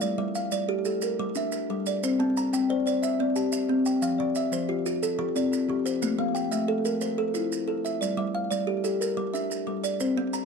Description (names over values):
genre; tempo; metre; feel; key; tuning
southern african traditional, mbira-style interlocking cycle; 120 BPM (dotted quarters); 12/8; straight; G dorian; A4 = 439 Hz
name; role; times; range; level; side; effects
kalimba; arpeggios; 0.0-10.3 s; F3 to A5; -27 LUFS; left 4 dB; none
kalimba; arpeggios; 0.0-10.4 s; F3 to Bb5; -29 LUFS; right 6 dB; slapback echo
maracas; percussion; 0.0-10.4 s; none; -38 LUFS; right 8 dB; none
room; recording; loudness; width
light reverb; dark, warm production; -24 LUFS; side -5 dB against mid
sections
0.0-10.4 A section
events
none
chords
0.0 Gm; 2.0 C; 4.0 F; 6.0 Am; 8.0 Gm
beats
| 0.02 0.52 1.03 1.53 | 2.03 2.53 3.03 3.53 | 4.03 4.53 5.02 5.52 | 6.02 6.52 7.02 7.51 | 8.01 8.51 9.01 9.50 | 10.00